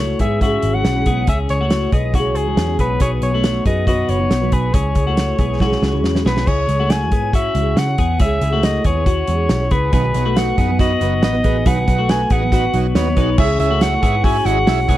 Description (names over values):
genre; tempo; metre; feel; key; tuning
jangly indie pop; 139 BPM; 4/4; straight; C# minor; A4 = 441 Hz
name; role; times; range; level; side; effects
breathy soprano saxophone; melody; 0.0-15.0 s; G#4 to G#5; -22 LUFS; equal; slapback echo
fingerpicked steel-string acoustic guitar; accompaniment; 0.0-15.0 s; B2 to C#5; -24 LUFS; right 4 dB; none
twelve-string electric guitar; arpeggios; 0.0-15.0 s; A3 to B4; -23 LUFS; left 6 dB; none
vintage muted picked electric bass; bass; 0.0-15.0 s; F#1 to C#3; -20 LUFS; equal; none
loose indie drum kit; drums; 0.2-15.0 s; crash cymbal, hi-hat, kick drum, snare drum; -18 LUFS; equal; none
overdriven combo organ; accompaniment; 9.9-15.0 s; D#4 to F#5; -26 LUFS; right 16 dB; none
glockenspiel with rubber mallets; second line; 13.4-15.0 s; C#6; -32 LUFS; left 6 dB; none
room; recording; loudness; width
little or no reverb; dry, close 1970s-style studio recording; -14 LUFS; side -14 dB against mid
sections
0.0-6.5 A section; 6.5-13.4 B section; 13.4-15.0 C section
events
drum fill 5.6-6.5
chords
0.0 C#m; 3.0 B; 4.7 C#m; 9.9 B; 13.4 C#m